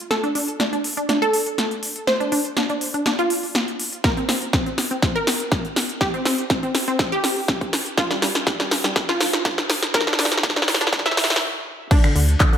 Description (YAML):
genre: progressive house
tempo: 122 BPM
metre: 4/4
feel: straight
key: unclear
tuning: A4 = 440 Hz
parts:
  - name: wide unison pluck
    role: arpeggios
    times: 0.1-12.6 s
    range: D3 to E5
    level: -24 LUFS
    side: equal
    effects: sidechain pumping, tape echo
  - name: big-room dance drum kit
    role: drums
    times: 0.1-12.6 s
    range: crash cymbal, finger snaps, handclaps, hi-hat, snare drum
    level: -21 LUFS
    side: equal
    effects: none
  - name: electronic kick drum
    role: drums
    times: 4.0-12.5 s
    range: none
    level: -21 LUFS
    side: equal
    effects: none
  - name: saturated sub bass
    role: bass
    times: 12.2-12.4 s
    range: D2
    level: -16 LUFS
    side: equal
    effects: sidechain pumping
room: moderate lush hall reverb, RT60 1.8 s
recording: high-pass filter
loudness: -18 LUFS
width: side -9 dB against mid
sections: 0.0-11.9 A section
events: build-up 0.0-11.9; drum fill 0.0-11.4; filter sweep 0.0-11.9; stop 11.4-11.9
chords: 0.0 Dm; 4.0 N.C.; 8.0 G5; 11.9 N.C.